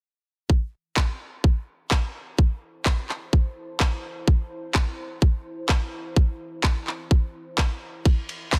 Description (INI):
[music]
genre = bass house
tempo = 127 BPM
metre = 4/4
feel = swing 57% on 16ths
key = A minor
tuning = A4 = 440 Hz
[part]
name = electronic kick drum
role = drums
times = 0.5-8.6 s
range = none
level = -22 LUFS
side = equal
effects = none
[part]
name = deep dark ambient pad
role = texture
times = 2.7-8.6 s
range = E4 to A5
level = -44 LUFS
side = equal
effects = chorus, built-in reverb, sidechain pumping
[part]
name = electronic handclaps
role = drums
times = 1.0-8.6 s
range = none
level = -30 LUFS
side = equal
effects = soft clipping on snare
[part]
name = damped 70s drum kit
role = drums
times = 8.1-8.6 s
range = ride cymbal, snare drum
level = -36 LUFS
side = equal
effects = sidechain pumping on cymbals, high-pass filter on cymbals, soft clipping on snare, high-pass filter on snare, high-pass filter on room
[sound]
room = studio reverb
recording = dense, heavily limited modern master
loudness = -25 LUFS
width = mono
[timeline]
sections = 0.5-8.6 A section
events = fade-in on ambient pad 0.5-8.6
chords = 0.5 Am; 8.1 N.C.